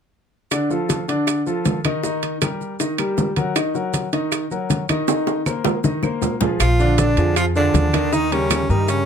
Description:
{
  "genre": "Afro-Cuban jazz",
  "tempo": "158 BPM",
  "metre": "4/4",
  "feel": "straight",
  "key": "unclear",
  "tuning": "A4 = 441 Hz",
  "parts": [
    { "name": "clear baby grand piano", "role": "accompaniment", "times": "0.5-9.0 s", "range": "D3 to Eb5", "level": "-22 LUFS", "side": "left 1 dB", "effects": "none" },
    { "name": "bongos", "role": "percussion", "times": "0.5-9.1 s", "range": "none", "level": "-28 LUFS", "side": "left 8 dB", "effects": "none" },
    { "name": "claves", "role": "percussion", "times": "0.5-8.7 s", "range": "none", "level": "-30 LUFS", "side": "right 9 dB", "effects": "none" },
    { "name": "congas", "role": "percussion", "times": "0.5-9.1 s", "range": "none", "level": "-25 LUFS", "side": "equal", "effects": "none" },
    { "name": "maracas", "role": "percussion", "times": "0.5-9.1 s", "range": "none", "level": "-33 LUFS", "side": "right 10 dB", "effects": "none" },
    { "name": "timbales", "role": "percussion", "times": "0.5-9.1 s", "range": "none", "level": "-25 LUFS", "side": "right 9 dB", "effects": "none" },
    { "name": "bright tenor saxophone", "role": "melody", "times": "6.6-9.1 s", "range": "Db4 to F4", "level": "-21 LUFS", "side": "left 1 dB", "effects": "none" },
    { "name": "growling trombone", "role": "second line", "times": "6.6-9.1 s", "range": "Db3 to F3", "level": "-26 LUFS", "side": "right 9 dB", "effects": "none" },
    { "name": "upright bass", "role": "bass", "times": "6.6-9.0 s", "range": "Bb1 to G2", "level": "-20 LUFS", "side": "equal", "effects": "none" }
  ],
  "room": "moderate club ambience, RT60 0.5 s",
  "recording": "close, detailed microphones",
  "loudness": "-18 LUFS",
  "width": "side -7 dB against mid",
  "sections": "0.5-6.6 A section; 6.6-9.1 B section",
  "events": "drum fill 5.1-6.6",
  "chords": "0.5 Dm; 2.0 Eb; 3.6 Ebm; 5.1 F7sus4; 6.6 Bb7; 8.1 Eb7",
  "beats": "| 0.52 0.90 1.28 1.66 | 2.04 2.42 2.80 3.18 | 3.56 3.94 4.32 4.70 | 5.08 5.46 5.84 6.22 | 6.61 6.99 7.37 7.75 | 8.13 8.51 8.89"
}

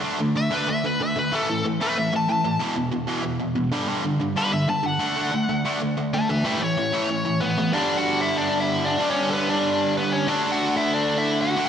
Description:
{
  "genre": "punk",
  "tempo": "188 BPM",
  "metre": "4/4",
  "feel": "straight",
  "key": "unclear",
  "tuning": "A4 = 440 Hz",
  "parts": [
    { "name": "distorted electric guitar", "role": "riff", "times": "0.0-11.7 s", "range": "E2 to D4", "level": "-23 LUFS", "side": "right 1 dB", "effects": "overdrive, slapback echo" },
    { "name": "biting overdriven guitar", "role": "melody", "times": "0.4-11.7 s", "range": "B3 to A5", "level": "-24 LUFS", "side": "left 2 dB", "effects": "none" }
  ],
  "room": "wet lush hall reverb, RT60 2.0 s",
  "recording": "big arena sound",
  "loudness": "-20 LUFS",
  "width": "side -8 dB against mid",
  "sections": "0.0-7.7 A section; 7.7-11.7 B section",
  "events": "overdriven electric guitar solo 0.0-7.7",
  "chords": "0.0 D5; 1.3 A5; 2.6 E5; 3.7 G5; 5.0 D; 6.4 A; 7.7 G; 10.3 D",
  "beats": "| 0.05 0.37 0.69 1.01 | 1.33 1.65 1.97 2.29 | 2.61 2.93 3.25 3.57 | 3.89 4.21 4.53 4.85 | 5.17 5.49 5.81 6.13 | 6.45 6.77 7.09 7.41 | 7.73 8.05 8.37 8.69 | 9.01 9.33 9.65 9.97 | 10.29 10.60 10.92 11.24 | 11.56"
}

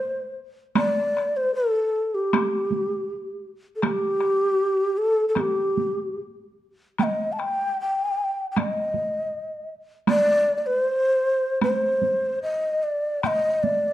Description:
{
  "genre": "japanese traditional, Japanese chamber music",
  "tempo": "72-80 BPM",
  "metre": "2/4",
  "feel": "rubato",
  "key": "unclear",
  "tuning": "A4 = 440 Hz",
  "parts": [
    { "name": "breathy mellow shakuhachi", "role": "melody", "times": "0.0-13.9 s", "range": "G4 to A5", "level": "-22 LUFS", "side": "equal", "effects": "none" },
    { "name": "taiko ensemble", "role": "percussion", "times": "0.8-13.8 s", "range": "none", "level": "-26 LUFS", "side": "right 3 dB", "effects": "none" }
  ],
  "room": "moderate recital hall reverb, RT60 1.4 s",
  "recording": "dark, warm production",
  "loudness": "-21 LUFS",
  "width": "side -13 dB against mid",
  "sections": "0.8-13.2 A section",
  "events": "none",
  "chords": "none",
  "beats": "| 0.77 1.56 | 2.33 3.08 | 3.83 4.59 | 5.36 6.17 | 6.98 7.77 | 8.55 9.31 | 10.06 10.83 | 11.61 12.42 | 13.24"
}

